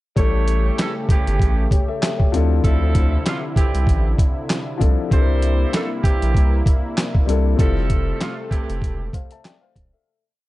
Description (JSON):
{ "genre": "hip hop, boom-bap hip-hop", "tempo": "97 BPM", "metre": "4/4", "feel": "swing 56% on 16ths", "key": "unclear", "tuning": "A4 = 443 Hz", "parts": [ { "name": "dark concert grand piano", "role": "accompaniment", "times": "0.2-10.2 s", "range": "F3 to A5", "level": "-27 LUFS", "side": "left 8 dB", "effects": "high-pass filter, low-pass filter" }, { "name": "warm analog pad", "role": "sustained chords", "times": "0.2-10.0 s", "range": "C3 to A4", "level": "-29 LUFS", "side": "right 1 dB", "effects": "chorus, high-pass filter, low-pass filter" }, { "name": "edgy saxophone section", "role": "stabs", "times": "0.2-9.1 s", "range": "C3 to C#5", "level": "-28 LUFS", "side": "right 4 dB", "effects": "high-pass filter, low-pass filter, slapback echo" }, { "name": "saturated sub bass", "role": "bass", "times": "0.2-9.9 s", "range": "D1 to D2", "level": "-19 LUFS", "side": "equal", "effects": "none" }, { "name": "boom bap sampler-style drum kit", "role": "drums", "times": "0.2-9.9 s", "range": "handclaps, hi-hat, kick drum, snare drum", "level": "-18 LUFS", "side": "equal", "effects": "none" } ], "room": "digital ambience", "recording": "dark, warm production, nothing above 10.9 kHz", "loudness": "-16 LUFS", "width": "side -18 dB against mid", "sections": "0.2-10.1 hook", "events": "fade-out 7.6-10.1", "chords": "0.2 A7; 2.3 Dm9; 5.1 C7; 7.6 Fmaj7", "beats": "| 0.17 0.78 1.40 2.02 | 2.64 3.26 3.88 4.50 | 5.11 5.73 6.35 6.97 | 7.59 8.21 8.83 9.44" }